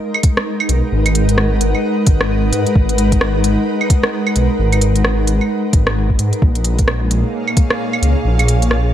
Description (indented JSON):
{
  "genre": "future garage",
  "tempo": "131 BPM",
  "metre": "4/4",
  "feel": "swing 60% on 16ths",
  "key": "G# dorian",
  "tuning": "A4 = 440 Hz",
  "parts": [
    { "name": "granular cloud pad", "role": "sustained chords", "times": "0.0-8.9 s", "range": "A#2 to F#5", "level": "-18 LUFS", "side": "equal", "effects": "built-in reverb, sidechain pumping" },
    { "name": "organic electronic drum kit", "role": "drums", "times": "0.1-8.8 s", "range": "claves, hi-hat, rim click", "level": "-19 LUFS", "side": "right 1 dB", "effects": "none" },
    { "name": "electronic kick drum", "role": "drums", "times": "0.2-7.7 s", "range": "none", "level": "-13 LUFS", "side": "equal", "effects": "none" },
    { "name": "dark detuned saw bass", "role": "bass", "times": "0.7-8.9 s", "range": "G#1 to G#2", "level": "-16 LUFS", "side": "equal", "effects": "sidechain pumping" }
  ],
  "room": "light reverb, digital ambience",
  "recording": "none",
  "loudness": "-13 LUFS",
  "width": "side -11 dB against mid",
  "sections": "0.0-8.9 A section",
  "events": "none",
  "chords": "0.0 G#m9; 6.4 A#m7"
}